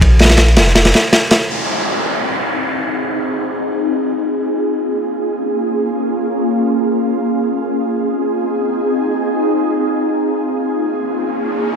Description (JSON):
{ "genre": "drum and bass, jungle", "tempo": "free time", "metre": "none", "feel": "none", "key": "F minor", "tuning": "A4 = 439 Hz", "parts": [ { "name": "soft dub sub bass", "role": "bass", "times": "0.0-0.9 s", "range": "F1 to Bb1", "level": "-11 LUFS", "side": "equal", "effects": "none" }, { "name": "crunchy breakbeat drum kit", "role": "drums", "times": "0.0-1.4 s", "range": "kick drum, ride cymbal, snare drum", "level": "-13 LUFS", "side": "equal", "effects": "none" }, { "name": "ethereal airy pad", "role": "sustained chords", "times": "2.3-11.8 s", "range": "Bb3 to Ab4", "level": "-16 LUFS", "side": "equal", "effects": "ensemble chorus, built-in reverb, vintage 12-bit sampler grit" }, { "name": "downlifter and riser", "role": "sound effects", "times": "1.5-4.5, 10.8-11.8 s", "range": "none", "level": "-22 LUFS", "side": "equal", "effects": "none" } ], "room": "moderate lush hall reverb, RT60 2.2 s", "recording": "none", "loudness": "-14 LUFS", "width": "side -6 dB against mid", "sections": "0.0-1.5 A section; 1.5-11.8 B section", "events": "filter sweep on ambient pad 1.5-11.8; riser 10.8-11.8", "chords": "0.0 Bb5; 1.5 Fm7; 4.5 Bbm7; 7.4 Fm7; 10.4 Bbm7" }